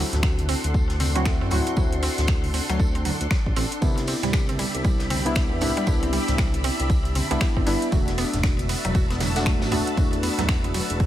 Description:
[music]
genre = deep house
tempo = 117 BPM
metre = 4/4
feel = swing 60% on 16ths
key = unclear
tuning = A4 = 442 Hz
[part]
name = soft string machine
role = sustained chords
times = 0.0-11.1 s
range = D4 to C6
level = -31 LUFS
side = left 1 dB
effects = ensemble chorus, sidechain pumping
[part]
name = mallet-like synth pluck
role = arpeggios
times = 0.0-11.1 s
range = F#3 to A4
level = -31 LUFS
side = right 2 dB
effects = chorus, sidechain pumping, ping-pong delay
[part]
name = warm analog keys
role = stabs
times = 0.0-11.1 s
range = A3 to F#4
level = -29 LUFS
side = equal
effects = chorus, sidechain pumping, ping-pong delay
[part]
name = smooth synth bass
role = bass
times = 0.0-11.1 s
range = E1 to F#2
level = -26 LUFS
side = equal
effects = tube saturation, sidechain pumping
[part]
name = deep house drum kit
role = drums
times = 0.1-11.1 s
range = finger snaps, hi-hat, ride cymbal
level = -31 LUFS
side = right 1 dB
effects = overdrive, small room ambience
[part]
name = vintage brush drum kit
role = drums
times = 0.1-10.9 s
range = hi-hat, snare drum, tambourine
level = -38 LUFS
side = left 1 dB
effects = sidechain pumping on hats, high-pass filter on hats, small room ambience, high-pass filter on snare, sidechain pumping on perc, high-pass filter on perc, high-pass filter on room
[part]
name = congas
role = percussion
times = 0.1-10.7 s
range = none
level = -34 LUFS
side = right 2 dB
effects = none
[part]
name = electronic kick drum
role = drums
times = 0.2-11.1 s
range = none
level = -23 LUFS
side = equal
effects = overdrive, small room ambience
[sound]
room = studio ambience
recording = none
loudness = -20 LUFS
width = side -12 dB against mid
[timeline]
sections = 0.0-11.1 A section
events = none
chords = 0.0 D7; 3.8 Cmaj9; 7.9 E9sus4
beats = 0.23 0.74 1.26 | 1.77 2.28 2.79 3.31 | 3.82 4.33 4.85 5.36 | 5.87 6.38 6.90 7.41 | 7.92 8.44 8.95 9.46 | 9.97 10.49 11.00

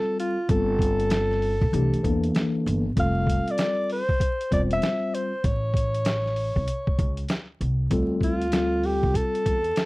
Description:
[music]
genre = hip hop, jazz-hop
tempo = 97 BPM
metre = 4/4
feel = swing 64% on 16ths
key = D minor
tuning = A4 = 440 Hz
[part]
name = breathy alto saxophone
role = melody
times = 0.0-9.9 s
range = F4 to F5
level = -26 LUFS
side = equal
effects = slapback echo
[part]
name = mellow tine electric piano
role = accompaniment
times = 0.0-9.6 s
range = E3 to C5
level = -27 LUFS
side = left 2 dB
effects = medium stereo tremolo
[part]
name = lo-fi sampler-style drum kit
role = drums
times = 0.2-9.9 s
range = hi-hat, kick drum, snare drum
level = -26 LUFS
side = equal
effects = none
[part]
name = upright bass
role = bass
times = 0.5-9.7 s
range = E1 to E2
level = -27 LUFS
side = equal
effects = none
[sound]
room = little or no reverb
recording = dry, close 1970s-style studio recording, vinyl crackle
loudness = -22 LUFS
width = side -21 dB against mid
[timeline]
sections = 0.0-7.9 A section; 7.9-9.9 B section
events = alto saxophone solo 7.9-9.9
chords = 0.5 G7sus2; 1.7 C13; 3.0 Fadd9; 5.4 A; 7.9 Dm11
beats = | 0.49 1.11 1.73 2.35 | 2.96 3.58 4.20 4.82 | 5.44 6.06 6.68 7.29 | 7.91 8.53 9.15 9.77

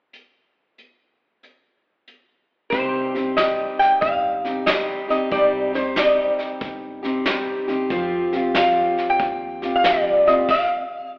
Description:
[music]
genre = honky-tonk and classic country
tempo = 93 BPM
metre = 4/4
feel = swing 66% on 8ths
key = C minor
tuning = A4 = 443 Hz
[part]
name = vintage brush drum kit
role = drums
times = 0.1-10.7 s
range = crash cymbal, hi-hat, kick drum, snare drum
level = -26 LUFS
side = equal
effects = none
[part]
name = lap resonator guitar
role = melody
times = 2.7-11.1 s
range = C5 to G5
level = -18 LUFS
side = equal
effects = none
[part]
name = picked steel-string acoustic guitar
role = accompaniment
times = 2.7-10.5 s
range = C3 to G4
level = -24 LUFS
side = equal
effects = none
[part]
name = upright bass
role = bass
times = 2.7-10.4 s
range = G1 to F2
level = -42 LUFS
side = equal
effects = none
[sound]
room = wet recital hall reverb, RT60 1.6 s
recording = recorded in a church or concert hall, telephone sound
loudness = -18 LUFS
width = side -27 dB against mid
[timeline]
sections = 0.1-2.7 A section; 2.7-11.2 B section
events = stop 10.5-11.2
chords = 0.1 N.C.; 2.7 Cm; 7.9 Fsus2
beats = | 0.14 0.79 1.43 2.08 | 2.73 3.37 4.02 4.67 | 5.32 5.96 6.61 7.26 | 7.90 8.55 9.20 9.85 | 10.49

